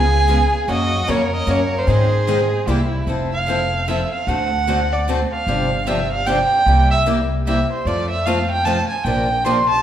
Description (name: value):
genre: acoustic string swing (jazz manouche)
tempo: 150 BPM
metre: 3/4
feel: swing 63% on 8ths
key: F major from 3.1 s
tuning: A4 = 440 Hz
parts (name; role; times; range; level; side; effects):
- warm violin; melody; 0.0-2.6 s; C5 to Ab5; -20 LUFS; right 1 dB; none
- warm violin; second line; 0.0-9.8 s; E4 to C6; -20 LUFS; right 2 dB; none
- upright bass; bass; 0.0-9.8 s; F1 to Ab2; -21 LUFS; equal; none
- picked acoustic archtop guitar; accompaniment; 0.3-9.6 s; C3 to Bb4; -24 LUFS; left 3 dB; none
- picked steel-string acoustic guitar; accompaniment; 0.3-9.6 s; C3 to Bb4; -25 LUFS; right 2 dB; none
room: wet recital hall reverb, RT60 1.5 s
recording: recorded in a church or concert hall, tape saturation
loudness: -16 LUFS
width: side -10 dB against mid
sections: 0.0-3.1 A section; 3.1-9.8 B section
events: violin solo 3.1-9.8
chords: 0.0 Db7; 0.7 Gb; 1.9 Ab; 2.7 C7; 3.1 Fmaj7; 4.3 D7; 5.5 G7sus4; 6.7 C7; 7.9 F; 9.1 Bbadd9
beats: 0.29 | 0.69 1.08 1.48 | 1.88 2.28 2.68 | 3.08 3.48 3.88 | 4.28 4.67 5.07 | 5.47 5.87 6.27 | 6.67 7.07 7.46 | 7.86 8.26 8.66 | 9.05 9.45